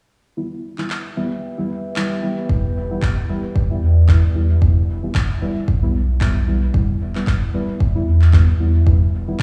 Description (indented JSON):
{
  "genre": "dub techno",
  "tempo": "113 BPM",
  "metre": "4/4",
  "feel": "swing 55% on 16ths",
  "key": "E minor",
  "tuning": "A4 = 440 Hz",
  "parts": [
    { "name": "deep dark ambient pad", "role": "sustained chords", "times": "1.0-4.6 s", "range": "G4 to G5", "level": "-35 LUFS", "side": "equal", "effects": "chorus, built-in reverb, sidechain pumping" },
    { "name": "deep mellow chord stab", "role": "stabs", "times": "0.4-9.4 s", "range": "E3 to E4", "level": "-27 LUFS", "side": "equal", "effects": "chorus, phaser, sidechain pumping, dub echo" },
    { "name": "electronic handclaps", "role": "drums", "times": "0.8-9.4 s", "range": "none", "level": "-32 LUFS", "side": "equal", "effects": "dub echo" },
    { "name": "soft dub sub bass", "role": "bass", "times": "2.5-9.4 s", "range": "D1 to E2", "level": "-19 LUFS", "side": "equal", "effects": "sidechain pumping" },
    { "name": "electronic kick drum", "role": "drums", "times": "2.5-9.4 s", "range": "none", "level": "-19 LUFS", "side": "equal", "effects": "none" }
  ],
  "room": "little or no reverb",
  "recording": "played on a big sound system in a bare room, stone room reverb, small room reverb",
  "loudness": "-18 LUFS",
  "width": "mono",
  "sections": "0.4-4.6 A section; 4.6-9.4 B section",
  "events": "filter sweep on synth stab 4.6-9.4",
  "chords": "0.4 Em",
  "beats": "| 0.37 0.90 1.43 1.96 | 2.49 3.02 3.56 4.09 | 4.62 5.15 5.68 6.21 | 6.74 7.27 7.80 8.34 | 8.87 9.40"
}